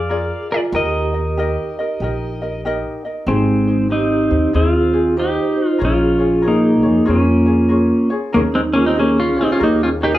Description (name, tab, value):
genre	Hawaiian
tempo	95 BPM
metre	4/4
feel	swing 64% on 8ths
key	Eb major, Ab major from 3.3 s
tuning	A4 = 440 Hz
part	pedal steel guitar	melody	0.0-10.2 s	Eb3 to F5	-16 LUFS	equal	none
part	vibraphone with medium mallets	second line	0.0-10.2 s	Db4 to C5	-24 LUFS	right 2 dB	none
part	ukulele	accompaniment	0.0-10.2 s	Eb4 to Eb5	-25 LUFS	left 2 dB	none
part	upright bass	bass	0.0-10.2 s	Ab1 to F2	-22 LUFS	equal	none
room	light reverb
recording	rough home demo mix, small room ambience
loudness	-14 LUFS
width	side -14 dB against mid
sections	0.0-3.3 A section; 3.3-10.2 B section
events	none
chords	0.0 Bb7; 0.7 Eb; 3.3 Abmaj7; 5.8 Bbm7; 8.3 Eb7sus4; 9.6 Eb7